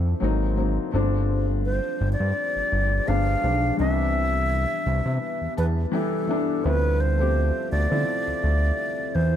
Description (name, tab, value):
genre	R&B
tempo	84 BPM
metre	4/4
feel	swing 54% on 16ths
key	D dorian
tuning	A4 = 439 Hz
part	breathy alto flute	melody	0.0-9.4 s	A4 to F5	-26 LUFS	right 1 dB	plate reverb, ping-pong delay
part	felt-muted upright piano	accompaniment	0.0-9.4 s	E3 to A5	-28 LUFS	left 4 dB	none
part	deep dark ambient pad	sustained chords	0.0-9.4 s	C3 to C5	-34 LUFS	left 1 dB	chorus, built-in reverb
part	fat analog bass	bass	0.0-9.4 s	G1 to D3	-23 LUFS	equal	none
room	light reverb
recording	none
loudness	-21 LUFS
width	side -10 dB against mid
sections	0.0-6.6 A section; 6.6-9.4 B section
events	felt piano fill 5.2-6.6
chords	0.2 G#9; 0.9 G9sus4; 3.1 G7b9; 3.8 Cmaj7; 6.6 Dm9